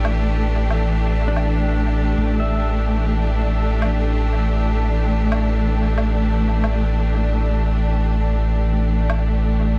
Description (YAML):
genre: ambient dub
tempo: 91 BPM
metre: 4/4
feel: swing 54% on 16ths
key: unclear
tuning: A4 = 439 Hz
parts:
  - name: bright studio string section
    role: sustained chords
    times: 0.0-9.8 s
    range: E3 to G4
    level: -25 LUFS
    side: equal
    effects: vintage 12-bit sampler grit
  - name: soft dub sub bass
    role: bass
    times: 0.0-9.8 s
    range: A1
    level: -21 LUFS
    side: equal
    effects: none
  - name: woodblock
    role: drums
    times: 0.0-9.2 s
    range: none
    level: -34 LUFS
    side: equal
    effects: studio reverb, dub echo
  - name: pedal steel guitar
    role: arpeggios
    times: 1.3-5.6 s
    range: D4 to E5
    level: -34 LUFS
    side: equal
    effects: low-pass filter, dub echo
room: light reverb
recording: echo-heavy mix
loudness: -20 LUFS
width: mono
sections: 0.0-9.8 A section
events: none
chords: 0.0 A7sus4